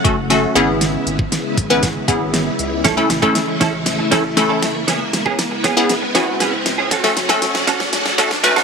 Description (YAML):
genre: dance-pop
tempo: 118 BPM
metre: 4/4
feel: straight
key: unclear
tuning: A4 = 435 Hz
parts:
  - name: wavetable chord stab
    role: accompaniment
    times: 0.0-8.6 s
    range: A3 to B4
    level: -16 LUFS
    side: left 1 dB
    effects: phaser, sidechain pumping
  - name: string machine, violins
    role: sustained chords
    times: 0.0-8.6 s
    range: C#3 to F#4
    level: -22 LUFS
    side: equal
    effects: ensemble chorus, sidechain pumping
  - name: round analog bass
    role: bass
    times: 0.0-8.6 s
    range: E1 to C#2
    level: -29 LUFS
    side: equal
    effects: sidechain pumping
  - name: pop drum kit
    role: drums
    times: 0.0-8.6 s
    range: hi-hat, kick drum, snare drum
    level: -20 LUFS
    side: equal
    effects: none
  - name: riser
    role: sound effects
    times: 0.0-8.6 s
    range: none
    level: -26 LUFS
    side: right 1 dB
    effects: none
  - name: direct-recorded clean electric guitar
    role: riff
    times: 2.8-8.6 s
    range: B3 to A4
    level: -20 LUFS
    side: right 5 dB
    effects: ensemble chorus
room: light reverb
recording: high-pass filter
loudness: -14 LUFS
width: side -5 dB against mid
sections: 0.0-8.6 A section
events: build-up 0.0-8.6; drum fill 0.0-8.6; riser 0.0-8.6; filter sweep 0.0-8.6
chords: 0.0 F#m; 0.6 E6/G#; 2.8 A; 4.9 E6; 6.9 F#m